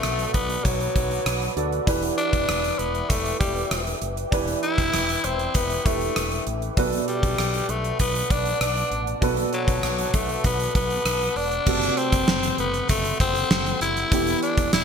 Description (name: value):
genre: 1980s-style pop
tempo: 98 BPM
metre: 4/4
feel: straight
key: E minor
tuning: A4 = 439 Hz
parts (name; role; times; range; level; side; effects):
- raspy tenor saxophone; melody; 0.0-14.8 s; F#3 to E4; -26 LUFS; left 3 dB; none
- warm baby grand piano; accompaniment; 0.0-14.8 s; B2 to D5; -29 LUFS; right 3 dB; wide subtle chorus
- ethereal airy pad; sustained chords; 0.0-14.8 s; G4 to D6; -33 LUFS; right 2 dB; ensemble chorus, built-in reverb
- mellow fretless electric bass; bass; 0.0-14.8 s; E1 to D2; -30 LUFS; equal; none
- gated 80s drum kit; drums; 0.0-14.8 s; crash cymbal, hi-hat, kick drum, rim click, snare drum, tambourine; -25 LUFS; equal; gated reverb
- tube shaker; percussion; 11.7-14.8 s; none; -40 LUFS; right 12 dB; none
room: moderate plate reverb, RT60 1.8 s, small room ambience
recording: bright 1980s-style digital production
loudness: -21 LUFS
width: side -6 dB against mid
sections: 0.0-11.7 A section; 11.7-14.8 B section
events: none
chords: 0.0 Bm7; 1.9 Em7; 6.8 Bm7; 11.7 F#dim; 14.1 Em7